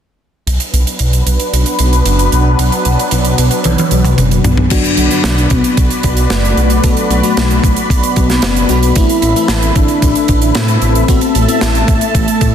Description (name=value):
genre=synthwave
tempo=113 BPM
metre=4/4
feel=straight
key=unclear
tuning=A4 = 442 Hz
part: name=lush unison pad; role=sustained chords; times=0.5-12.5 s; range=F#3 to B5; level=-18 LUFS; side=equal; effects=chorus, phaser, sidechain pumping
part: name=wide detuned saw bass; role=bass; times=0.5-12.5 s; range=F#1 to A2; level=-13 LUFS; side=equal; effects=chorus
part: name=tight metal drum kit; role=drums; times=0.5-12.5 s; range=crash cymbal, hi-hat, snare drum, toms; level=-17 LUFS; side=right 1 dB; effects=none
part: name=soft octave-layered synth lead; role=melody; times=4.7-12.5 s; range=A3 to E4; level=-16 LUFS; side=left 2 dB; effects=chorus, phaser, ping-pong delay
part: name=FM electric piano with soft pad layer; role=stabs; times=4.7-12.5 s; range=F#3 to B4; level=-20 LUFS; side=left 3 dB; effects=chorus
part: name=electronic kick drum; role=drums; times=4.7-12.5 s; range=none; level=-14 LUFS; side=equal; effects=none
room=light reverb, small room ambience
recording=dense, heavily limited modern master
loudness=-10 LUFS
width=side -9 dB against mid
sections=0.5-4.7 A section; 4.7-12.5 B section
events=drum fill 3.7-4.7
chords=0.5 Bm; 9.0 Amadd9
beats=| 0.47 1.00 1.53 2.06 | 2.59 3.12 3.65 4.18 | 4.71 5.25 5.78 6.31 | 6.84 7.37 7.90 8.43 | 8.96 9.49 10.02 10.55 | 11.09 11.62 12.15